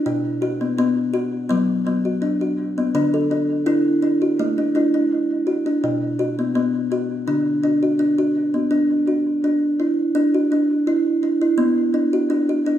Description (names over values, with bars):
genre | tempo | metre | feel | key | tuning
world meditative, meditative tuned percussion | 83 BPM | 4/4 | straight | D major pentatonic | A4 = 441 Hz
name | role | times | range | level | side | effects
kalimba | solo | 0.0-12.8 s | B2 to A4 | -17 LUFS | equal | diffuse ambient delay
room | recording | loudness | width
wet recital hall reverb, RT60 1.4 s, small room ambience | none | -17 LUFS | side -11 dB against mid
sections
0.0-8.7 A section; 8.7-12.8 B section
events
none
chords
0.1 Bm; 2.9 D; 5.8 Bm; 7.3 D; 11.6 Bm